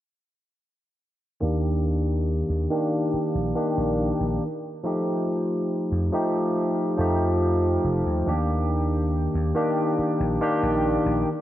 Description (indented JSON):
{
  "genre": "vaporwave",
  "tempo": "70 BPM",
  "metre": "4/4",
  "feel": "straight",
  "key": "Eb lydian",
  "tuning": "A4 = 442 Hz",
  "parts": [
    { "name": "barky tine electric piano", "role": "accompaniment", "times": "1.4-11.3 s", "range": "Eb3 to G4", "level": "-23 LUFS", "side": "equal", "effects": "overdrive, analog chorus, analog delay" },
    { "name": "vintage slap bass", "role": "bass", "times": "1.4-11.2 s", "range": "F1 to F2", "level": "-26 LUFS", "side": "equal", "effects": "tube saturation" }
  ],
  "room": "moderate lush hall reverb, RT60 2.3 s",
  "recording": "cassette tape, low-pass filter",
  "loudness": "-22 LUFS",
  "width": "side -13 dB against mid",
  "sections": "1.4-11.4 A section",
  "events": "filter sweep 1.4-11.4",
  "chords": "1.4 Ebmaj7; 4.4 F9; 8.3 Ebmaj7",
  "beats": "| 1.42 2.28 3.13 3.99 | 4.85 5.70 6.56 7.42 | 8.28 9.13 9.99 10.85"
}